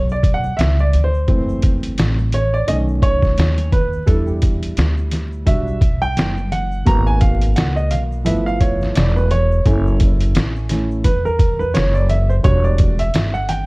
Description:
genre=hip hop, jazz-hop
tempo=86 BPM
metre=4/4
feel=swing 58% on 16ths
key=unclear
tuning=A4 = 440 Hz
part: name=upright bass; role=bass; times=0.0-13.7 s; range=E1 to E2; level=-18 LUFS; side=equal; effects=none
part: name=dark grand piano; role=accompaniment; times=0.1-13.7 s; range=D#3 to Bb5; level=-21 LUFS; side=right 1 dB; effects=none
part: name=congas and tube shaker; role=percussion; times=0.1-13.7 s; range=none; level=-30 LUFS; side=left 1 dB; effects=none
part: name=trip hop sampler-style drum kit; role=drums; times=0.2-13.7 s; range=hi-hat, kick drum, snare drum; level=-17 LUFS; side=equal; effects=none
room=small room reverb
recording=worn, warbling old tape, cassette tape, vinyl crackle, warbly pitch drift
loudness=-14 LUFS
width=side -25 dB against mid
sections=0.0-13.7 A section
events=grand piano solo 0.0-13.7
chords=0.0 Bm; 1.3 F#m7b5; 2.7 B7; 4.1 Em7; 6.9 G#m7; 8.3 G13; 9.7 F#m7; 12.4 Em7

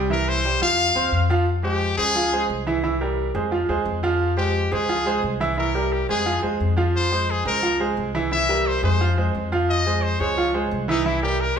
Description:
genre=latin, Cuban son and guajira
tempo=175 BPM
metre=4/4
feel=straight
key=F minor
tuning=A4 = 440 Hz
part: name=bright baby grand piano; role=arpeggios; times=0.0-11.6 s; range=E3 to C6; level=-23 LUFS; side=right 3 dB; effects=none
part: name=upright bass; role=bass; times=0.0-11.6 s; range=C2 to F2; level=-25 LUFS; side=left 1 dB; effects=none
part: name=brilliant trumpet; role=melody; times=0.1-11.6 s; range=Eb4 to F5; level=-23 LUFS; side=left 3 dB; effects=none
room=wet large studio reverb, RT60 1.3 s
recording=band playing live in one room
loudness=-19 LUFS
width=side -7 dB against mid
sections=0.0-1.5 A section; 1.5-11.6 B section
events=trumpet solo 1.5-11.6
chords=0.1 C; 0.8 F5; 1.5 Fmadd9; 2.2 Dbmaj7; 2.8 C7; 3.5 Fmadd9; 4.9 Dbmaj7; 5.6 C7; 6.3 Fm; 7.6 Dbmaj7; 8.3 C7; 9.0 Fm7; 10.4 Dbmaj7; 11.1 C7

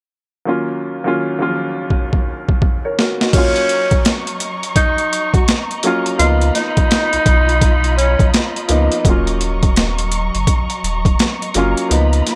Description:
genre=hip hop, boom-bap hip-hop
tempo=84 BPM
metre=4/4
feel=swing 63% on 16ths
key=Eb minor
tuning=A4 = 440 Hz
part: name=warm grand piano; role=accompaniment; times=0.5-12.4 s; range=Eb2 to Db5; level=-22 LUFS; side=equal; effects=cassette tape, high-pass filter, low-pass filter
part: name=boom bap sampler-style drum kit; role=drums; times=1.9-12.4 s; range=crash cymbal, hi-hat, kick drum, snare drum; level=-18 LUFS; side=equal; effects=overdrive, vintage 12-bit sampler grit
part: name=breathy tenor saxophone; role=melody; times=3.3-8.3 s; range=Db4 to Gb4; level=-21 LUFS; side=equal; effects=high-pass filter, low-pass filter, delay
part: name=dark studio string section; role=sustained chords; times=3.3-12.4 s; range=Gb3 to Db6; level=-26 LUFS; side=equal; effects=high-pass filter, low-pass filter
part: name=warm sub bass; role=bass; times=6.2-12.2 s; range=Eb1 to Db2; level=-19 LUFS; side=equal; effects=none
room=little or no reverb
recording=none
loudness=-16 LUFS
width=mono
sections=0.5-3.3 A section; 3.3-12.4 B section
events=drum fill 1.9-3.3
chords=0.5 Ebm7; 6.2 Db13; 9.0 Ebm7

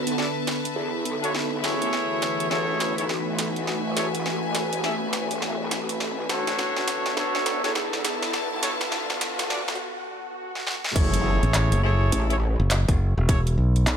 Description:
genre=glitch hop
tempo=103 BPM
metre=4/4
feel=swing 62% on 16ths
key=F# minor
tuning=A4 = 440 Hz
part: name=warbly tape-like pad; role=sustained chords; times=0.0-10.9 s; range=D3 to A4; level=-31 LUFS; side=right 2 dB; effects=chorus, built-in reverb, sidechain pumping
part: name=growl bass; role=bass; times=0.0-14.0 s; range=E1 to E2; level=-30 LUFS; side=equal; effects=chorus, tube saturation, high-pass filter
part: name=rich studio string section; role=texture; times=0.0-9.8 s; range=B4 to A5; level=-32 LUFS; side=left 5 dB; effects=sidechain pumping
part: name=drum and bass drum kit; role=drums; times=0.1-14.0 s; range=crash cymbal, handclaps, hi-hat, rim click, snare drum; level=-28 LUFS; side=right 1 dB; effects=overdrive, high-pass filter on hats, studio reverb, high-pass filter on snare, high-pass filter on cymbals
part: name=bright horn section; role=stabs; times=0.2-13.4 s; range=D4 to E5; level=-28 LUFS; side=equal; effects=sidechain pumping, dub echo
part: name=riser, swell and impact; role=sound effects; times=4.7-13.3 s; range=none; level=-34 LUFS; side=equal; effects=none
part: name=electronic kick drum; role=drums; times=11.0-13.4 s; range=none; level=-21 LUFS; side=equal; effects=overdrive, studio reverb
part: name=modern bright fingered electric bass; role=bass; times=11.4-13.8 s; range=E1 to B1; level=-20 LUFS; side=equal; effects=none
room=light reverb, digital ambience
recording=high-pass filter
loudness=-22 LUFS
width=side -8 dB against mid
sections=0.0-11.0 A section; 11.0-14.0 B section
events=build-up 0.0-11.0; drum fill 0.0-9.8, 10.5-11.0; filter sweep 0.0-11.0; riser 4.7-9.8; break 9.8-11.0; swell 9.8-11.0; drop 11.0-14.0; impact 11.0-13.3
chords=0.0 Bm7; 1.6 F#m7; 6.3 Bm7; 11.0 F#m7

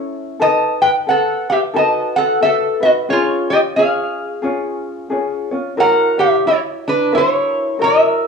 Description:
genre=Hawaiian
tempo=89 BPM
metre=4/4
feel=swing 60% on 8ths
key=unclear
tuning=A4 = 439 Hz
part: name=ukulele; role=accompaniment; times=0.0-8.3 s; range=C#4 to C#5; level=-21 LUFS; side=left 3 dB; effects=cassette tape
part: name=lap resonator guitar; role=melody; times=0.4-8.3 s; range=D4 to A5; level=-14 LUFS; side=equal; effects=cassette tape
room=moderate spring reverb, RT60 1.4 s, small room ambience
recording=home recording on cassette, studio reverb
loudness=-14 LUFS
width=side -5 dB against mid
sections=0.0-8.3 A section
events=none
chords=0.4 B7; 3.1 C#; 5.8 F#7

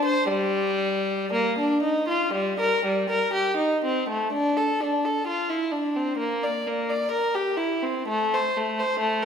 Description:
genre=classical, baroque-style suite movement for unaccompanied violin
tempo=58-69 BPM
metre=4/4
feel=rubato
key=G minor, D minor from 4.3 s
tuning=A4 = 438 Hz
part: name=rich violin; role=solo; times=0.0-9.2 s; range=G3 to D5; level=-22 LUFS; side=left 1 dB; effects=none
room=wet recital hall reverb, RT60 1.6 s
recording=heard from further back in the room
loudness=-22 LUFS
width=side -7 dB against mid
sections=0.0-4.3 A section; 4.3-9.2 A section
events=none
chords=none

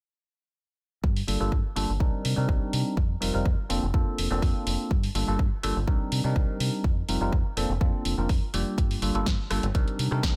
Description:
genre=filtered disco house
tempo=124 BPM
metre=4/4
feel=straight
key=G minor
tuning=A4 = 437 Hz
part: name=deep dub fingered electric bass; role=bass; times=1.0-10.3 s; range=F1 to C3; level=-31 LUFS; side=equal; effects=sidechain pumping, low-pass filter
part: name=electronic kick drum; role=drums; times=1.0-10.3 s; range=none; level=-28 LUFS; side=equal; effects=studio reverb
part: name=house drum kit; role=drums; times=1.2-10.3 s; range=hi-hat, rim click, snare drum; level=-35 LUFS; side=equal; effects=sidechain pumping on hats, studio reverb
part: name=bell-like tine electric piano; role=accompaniment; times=1.3-10.4 s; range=G3 to Bb4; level=-33 LUFS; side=equal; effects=phaser, sidechain pumping, low-pass filter
room=little or no reverb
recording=none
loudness=-27 LUFS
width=mono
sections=1.0-10.4 A section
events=filter sweep 1.0-10.4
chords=1.0 Gm7; 2.0 Cm9; 3.0 F7sus4; 3.7 Bbmaj7/F; 4.9 Gm7; 5.9 Cm9; 6.8 F7sus4; 7.6 Bbmaj7/F; 8.8 Gm7; 9.7 Cm9

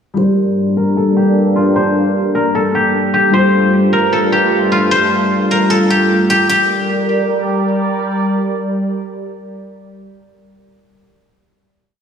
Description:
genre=hip hop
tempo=152 BPM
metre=4/4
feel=half-time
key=G minor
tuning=A4 = 440 Hz
part: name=dark grand piano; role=accompaniment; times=0.1-6.3 s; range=G3 to D5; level=-18 LUFS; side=left 1 dB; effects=analog chorus, low-pass filter
part: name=guzheng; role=melody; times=0.2-8.8 s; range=F4 to C5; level=-15 LUFS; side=left 1 dB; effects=low-pass filter, analog delay
part: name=sweeping resonant pad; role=sustained chords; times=0.2-10.1 s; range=G2 to D5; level=-15 LUFS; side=equal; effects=chorus, low-pass filter
room=wet lush hall reverb, RT60 2.9 s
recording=dreamy mix soaked in reverb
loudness=-12 LUFS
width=side -7 dB against mid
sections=0.2-6.5 breakdown; 6.5-9.7 final chord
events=filter sweep 0.2-6.5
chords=0.2 Gm; 3.3 F/G; 6.5 Gm

